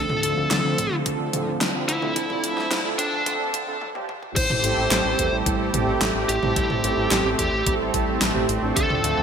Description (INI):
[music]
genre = synthwave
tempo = 109 BPM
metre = 4/4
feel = straight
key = A minor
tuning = A4 = 437 Hz
[part]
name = bluesy overdriven lead guitar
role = melody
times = 0.0-9.2 s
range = D4 to C5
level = -25 LUFS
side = equal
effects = distortion, digital delay
[part]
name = warm analog pad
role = sustained chords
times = 0.0-9.2 s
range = D3 to G4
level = -28 LUFS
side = equal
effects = chorus, tremolo, sidechain pumping
[part]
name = mellow synth brass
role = stabs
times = 0.0-9.2 s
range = F3 to A4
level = -28 LUFS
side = right 4 dB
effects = chorus, digital delay
[part]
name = fat analog bass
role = bass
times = 0.0-9.2 s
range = A1 to E2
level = -30 LUFS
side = equal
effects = tube saturation, sidechain pumping
[part]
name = pop drum kit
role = drums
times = 0.1-9.2 s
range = crash cymbal, handclaps, hi-hat, snare drum, toms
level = -26 LUFS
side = left 1 dB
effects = overdrive, gated reverb
[part]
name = electronic kick drum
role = drums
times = 0.8-8.9 s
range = none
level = -28 LUFS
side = left 1 dB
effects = overdrive
[sound]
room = moderate plate reverb, RT60 1.7 s, digital ambience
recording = bright 1980s-style digital production, high-pass filter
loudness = -20 LUFS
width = side -7 dB against mid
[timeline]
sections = 0.0-4.4 A section; 4.4-9.2 B section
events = filter sweep on analog synth pad 0.0-4.4; filter sweep on analog polysynth 0.0-4.4; break 3.8-4.4; drum fill 3.8-4.4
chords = 0.0 Dm7; 4.4 Am7